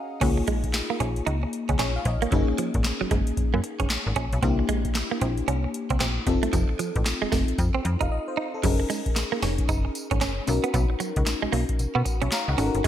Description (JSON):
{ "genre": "R&B, new jack swing", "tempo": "114 BPM", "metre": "4/4", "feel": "swing 62% on 16ths", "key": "unclear", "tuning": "A4 = 440 Hz", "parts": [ { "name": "FM electric piano with soft pad layer", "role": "accompaniment", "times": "0.0-12.9 s", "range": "Bb3 to Bb5", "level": "-29 LUFS", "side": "left 3 dB", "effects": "chorus" }, { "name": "direct-recorded clean electric guitar", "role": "riff", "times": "0.2-12.9 s", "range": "F3 to Eb4", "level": "-30 LUFS", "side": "right 8 dB", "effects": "analog chorus" }, { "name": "slap-like FM bass", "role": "bass", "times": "0.2-12.9 s", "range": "F1 to B2", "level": "-26 LUFS", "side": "equal", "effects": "none" }, { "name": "booming analog drum machine", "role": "drums", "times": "0.2-12.9 s", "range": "crash cymbal, handclaps, hi-hat, kick drum, snare drum, tambourine", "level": "-26 LUFS", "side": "equal", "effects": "gated reverb" } ], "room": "light reverb, digital ambience", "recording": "bright 1980s-style digital production", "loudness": "-23 LUFS", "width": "side -11 dB against mid", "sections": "0.2-8.6 A section; 8.6-12.9 B section", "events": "break 0.0, 8.1-8.6; FM electric piano fill 0.0, 12.1-12.8", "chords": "0.2 Db69; 2.3 Gb69; 4.4 C7; 6.3 F7; 8.6 Gb69; 10.5 Bmaj9", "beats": "| 0.21 0.74 1.27 1.79 | 2.32 2.85 3.37 3.90 | 4.42 4.95 5.48 6.00 | 6.53 7.06 7.58 8.11 | 8.63 9.16 9.69 10.21 | 10.74 11.27 11.79 12.32 | 12.85" }